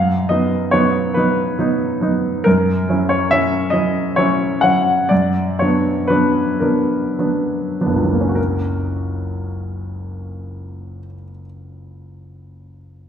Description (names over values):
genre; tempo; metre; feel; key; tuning
classical, romantic character piece for solo piano; 31-48 BPM (dotted quarters); 6/8; rubato; F# major; A4 = 440 Hz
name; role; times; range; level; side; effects
clear baby grand piano; solo; 0.0-13.1 s; F#1 to F#5; -16 LUFS; equal; none
room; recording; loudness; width
wet recital hall reverb, RT60 1.3 s; heard from further back in the room; -15 LUFS; side -8 dB against mid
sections
0.0-8.4 A section; 8.4-11.5 B section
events
slowing down 1.2-8.4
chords
0.0 B/F#; 2.5 F#5; 5.1 Bm/F#; 8.4 F#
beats
1.16 | 2.46 3.74 | 5.11 6.61 | 8.37 9.95